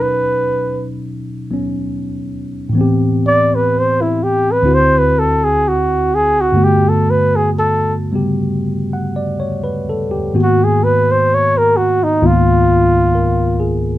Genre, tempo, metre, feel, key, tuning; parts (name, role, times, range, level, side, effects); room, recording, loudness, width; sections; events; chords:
jazz ballad; 64 BPM; 4/4; swing 68% on 8ths; A4 = 440 Hz
mellow flugelhorn; melody; 0.0-13.8 s; D#4 to D5; -14 LUFS; equal
tine electric piano; accompaniment; 0.0-14.0 s; C#2 to F#5; -16 LUFS; equal
light reverb; -12 LUFS; side -14 dB against mid
0.0-14.0 A section
flugelhorn solo 0.0-14.0
0.0 B; 2.8 Am9; 4.6 D9; 6.5 Gmaj9; 10.3 G#m9; 12.2 C#13